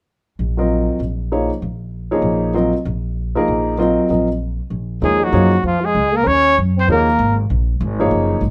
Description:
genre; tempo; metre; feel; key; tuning
jazz; 194 BPM; 4/4; swing 62% on 8ths; Eb dorian; A4 = 439 Hz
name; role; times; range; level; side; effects
upright bass; bass; 0.4-8.5 s; Gb1 to Gb2; -22 LUFS; equal; none
warm concert grand piano; accompaniment; 0.6-8.4 s; F3 to Eb5; -20 LUFS; equal; none
breathy trumpet; melody; 5.0-7.4 s; F4 to Db5; -18 LUFS; equal; none
trombone with plunger mute; second line; 5.0-7.4 s; F3 to Db4; -23 LUFS; equal; none
room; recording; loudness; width
light reverb; none; -17 LUFS; mono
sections
0.1-5.0 A section; 5.0-8.5 B section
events
none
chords
0.1 Ebmadd9; 5.0 Ebm9

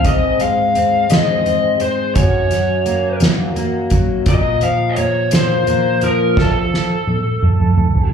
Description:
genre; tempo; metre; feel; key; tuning
six-eight pop ballad; 57 BPM (dotted quarters); 6/8; straight; Bb minor; A4 = 441 Hz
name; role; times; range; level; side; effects
lead guitar through a small cranked amp; melody; 0.0-8.1 s; A4 to F5; -17 LUFS; left 3 dB; overdrive, slapback echo
fingerpicked steel-string acoustic guitar; accompaniment; 0.0-6.9 s; Gb2 to C4; -18 LUFS; equal; double-tracked left and right, slapback echo
soft-mallet drum kit; drums; 0.0-8.1 s; crash cymbal, hi-hat, kick drum, snare drum, toms; -17 LUFS; right 1 dB; none
room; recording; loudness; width
moderate club reverb, RT60 0.8 s; live gig heard through the venue's PA, club reverb; -13 LUFS; side -7 dB against mid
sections
0.0-8.1 A section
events
drum fill 6.4-8.1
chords
0.1 Ab; 2.2 Gb; 4.3 Bb5; 6.4 N.C.

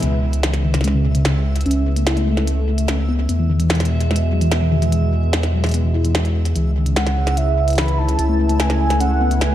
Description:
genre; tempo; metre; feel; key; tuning
IDM; 147 BPM; 4/4; straight; unclear; A4 = 438 Hz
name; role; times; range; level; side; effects
warm analog pad; sustained chords; 0.0-9.5 s; B2 to B4; -24 LUFS; equal; chorus
harp-like synth pluck; arpeggios; 0.0-9.5 s; B2 to E4; -22 LUFS; left 2 dB; chorus, tape echo
warm sub bass; bass; 0.0-9.5 s; C#2 to E2; -18 LUFS; equal; none
glitchy drum kit; drums; 0.0-9.5 s; hi-hat, snare drum; -24 LUFS; equal; small room ambience, tape echo
backwards swelling texture; texture; 0.0-9.5 s; E5; -32 LUFS; right 3 dB; built-in reverb
warm velvety synth lead; melody; 7.0-9.5 s; E5 to B5; -22 LUFS; right 3 dB; chorus, tape echo
room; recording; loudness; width
light reverb, digital ambience; dark, warm production; -16 LUFS; side -12 dB against mid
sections
0.0-9.5 A section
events
filter sweep on analog synth pad 0.0-9.5; filter sweep on synth pluck 0.0-9.5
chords
0.0 C#m7; 1.7 Aadd9/C#; 3.3 E; 6.6 C#m7; 8.2 Aadd9/C#

